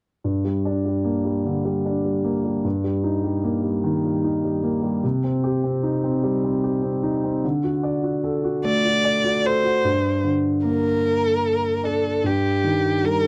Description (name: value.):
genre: pop.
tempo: 50 BPM (dotted quarters).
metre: 6/8.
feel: straight.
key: G harmonic minor.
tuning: A4 = 439 Hz.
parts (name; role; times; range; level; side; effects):
warm concert grand piano; accompaniment; 0.2-13.3 s; G2 to D5; -23 LUFS; equal; none.
dark violin; melody; 8.7-13.3 s; G4 to D5; -23 LUFS; equal; none.
room: light reverb.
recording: dry, close 1970s-style studio recording.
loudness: -22 LUFS.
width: mono.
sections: 0.2-9.8 A section; 9.8-13.3 B section.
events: grand piano fill 8.6-9.8.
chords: 0.2 Gm; 2.6 Eb/G; 5.0 Cm; 7.4 D; 9.8 Gm; 12.2 Eb/G.